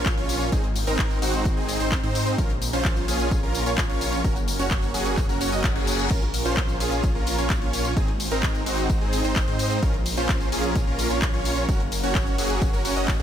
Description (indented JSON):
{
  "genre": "EDM, festival progressive house",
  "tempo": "129 BPM",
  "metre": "4/4",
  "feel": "straight",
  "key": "Bb minor",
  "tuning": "A4 = 443 Hz",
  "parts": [
    { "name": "lush unison pad", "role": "sustained chords", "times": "0.0-13.2 s", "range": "Ab3 to C5", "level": "-32 LUFS", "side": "equal", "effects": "chorus, phaser, sidechain pumping" },
    { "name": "supersaw chords", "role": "riff", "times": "0.0-13.2 s", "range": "C4 to Eb5", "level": "-26 LUFS", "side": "right 1 dB", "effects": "sidechain pumping, ping-pong delay" },
    { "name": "wide detuned saw bass", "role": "bass", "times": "0.0-13.2 s", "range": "Gb1 to Ab2", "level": "-28 LUFS", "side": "equal", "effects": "chorus, sidechain pumping" },
    { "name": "electronic kick drum", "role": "drums", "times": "0.1-13.2 s", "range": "none", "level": "-25 LUFS", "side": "equal", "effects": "none" },
    { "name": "house drum kit", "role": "drums", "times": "0.1-13.2 s", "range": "crash cymbal, handclaps, hi-hat, ride cymbal, tambourine", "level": "-30 LUFS", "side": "left 2 dB", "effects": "none" },
    { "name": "reverse cymbal", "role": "sound effects", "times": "5.6-6.1 s", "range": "none", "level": "-35 LUFS", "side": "left 8 dB", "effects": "none" }
  ],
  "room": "digital ambience",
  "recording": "none",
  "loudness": "-21 LUFS",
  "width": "side -9 dB against mid",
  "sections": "0.0-13.2 A section",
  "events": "reverse cymbal 5.6-6.1",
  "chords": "0.0 Bbm; 0.5 Ab; 2.4 Bbm; 4.2 Gb; 6.1 Bbm; 8.0 Ab; 9.8 Bbm; 11.7 Gb",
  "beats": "0.06 | 0.52 0.99 1.45 1.92 | 2.38 2.85 3.31 3.78 | 4.24 4.71 5.17 5.64 | 6.11 6.57 7.04 7.50 | 7.96 8.43 8.90 9.36 | 9.83 10.29 10.76 11.22 | 11.69 12.15 12.62 13.08"
}